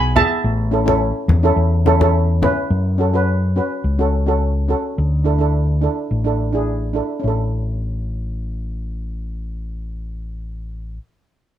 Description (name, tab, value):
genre	calypso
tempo	106 BPM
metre	4/4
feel	straight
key	A major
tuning	A4 = 440 Hz
part	fingered electric bass	bass	0.0-11.0 s	A1 to F#2	-19 LUFS	left 1 dB	none
part	steel pan	melody	0.2-2.1 s	E5 to A5	-18 LUFS	right 5 dB	none
part	steel pan	accompaniment	0.2-11.0 s	B3 to B4	-20 LUFS	right 1 dB	none
part	congas	percussion	0.2-2.6 s	none	-21 LUFS	left 3 dB	none
room	light reverb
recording	none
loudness	-16 LUFS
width	side -11 dB against mid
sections	0.0-2.7 A section; 2.7-7.2 B section; 7.2-9.5 C section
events	none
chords	0.4 A; 2.7 F#m; 5.0 Dsus2; 7.2 A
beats	| 0.44 1.01 1.57 2.14 | 2.70 3.27 3.83 4.40 | 4.97 5.53 6.10 6.67 | 7.24 7.80 8.37 8.94